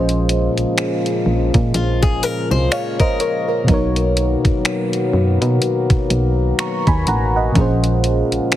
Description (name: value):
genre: contemporary R&B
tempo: 62 BPM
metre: 4/4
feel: swing 58% on 16ths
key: Bb minor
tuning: A4 = 440 Hz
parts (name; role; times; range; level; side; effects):
- mellow FM electric piano; accompaniment; 0.0-8.6 s; Bb2 to Db6; -20 LUFS; equal; chorus
- dark French horn section; sustained chords; 0.0-8.6 s; Db3 to F#4; -22 LUFS; left 2 dB; sidechain pumping
- solid FM bass; bass; 0.0-8.4 s; A1 to B2; -18 LUFS; equal; none
- detuned 8-bit digital drum machine; drums; 0.1-8.6 s; finger snaps, hi-hat, kick drum; -18 LUFS; equal; none
- picked acoustic archtop guitar; arpeggios; 1.7-3.6 s; F4 to Db5; -23 LUFS; left 5 dB; ping-pong delay
room: little or no reverb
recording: heavily compressed radio sound, multiband compression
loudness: -15 LUFS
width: side -13 dB against mid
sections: 0.0-8.6 A section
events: none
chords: 0.0 Bbm7; 3.7 Bmaj7; 7.6 Bbm7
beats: 0.78 1.75 2.71 | 3.68 4.65 5.62 6.59 | 7.55 8.52